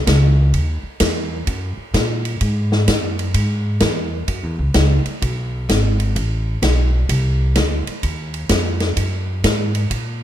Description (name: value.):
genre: jazz, big band swing.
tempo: 128 BPM.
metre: 4/4.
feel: swing 65% on 8ths.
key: F# major.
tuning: A4 = 440 Hz.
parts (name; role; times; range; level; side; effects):
upright bass; bass; 0.0-10.2 s; G#1 to A#2; -18 LUFS; equal; none.
swinging big-band drum kit; drums; 0.1-10.0 s; hi-hat, kick drum, ride cymbal, snare drum; -21 LUFS; equal; none.
room: little or no reverb.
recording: rough home demo mix.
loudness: -16 LUFS.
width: side -11 dB against mid.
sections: 0.0-10.2 A section.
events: none.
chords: none.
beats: 0.07 0.53 1.00 | 1.47 1.94 2.41 2.87 | 3.34 3.81 4.28 4.75 | 5.22 5.68 6.15 6.62 | 7.09 7.56 8.03 8.50 | 8.97 9.44 9.90.